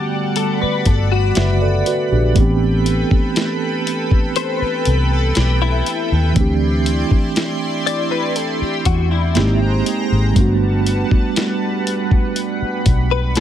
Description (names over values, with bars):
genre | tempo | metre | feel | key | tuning
contemporary R&B | 60 BPM | 4/4 | straight | unclear | A4 = 442 Hz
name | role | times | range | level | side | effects
mellow tine electric piano | accompaniment | 0.0-13.4 s | D3 to E5 | -21 LUFS | right 5 dB | medium stereo tremolo
chorused pulse-width pad | sustained chords | 0.0-13.4 s | G3 to C6 | -23 LUFS | right 1 dB | sidechain pumping
direct-recorded clean electric guitar | arpeggios | 0.0-13.4 s | E4 to D5 | -22 LUFS | left 11 dB | ensemble chorus
dusty soul sampler-style drum kit | drums | 0.4-13.4 s | hi-hat, kick drum, snare drum | -17 LUFS | left 1 dB | none
vintage muted fingered electric bass | bass | 0.6-13.4 s | F#1 to E2 | -17 LUFS | left 1 dB | none
room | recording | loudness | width
little or no reverb | none | -15 LUFS | side -10 dB against mid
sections
0.0-13.4 A section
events
none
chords
0.0 Em11; 2.4 Am9; 6.4 D9sus4; 9.4 G#maj9; 10.4 Gmaj9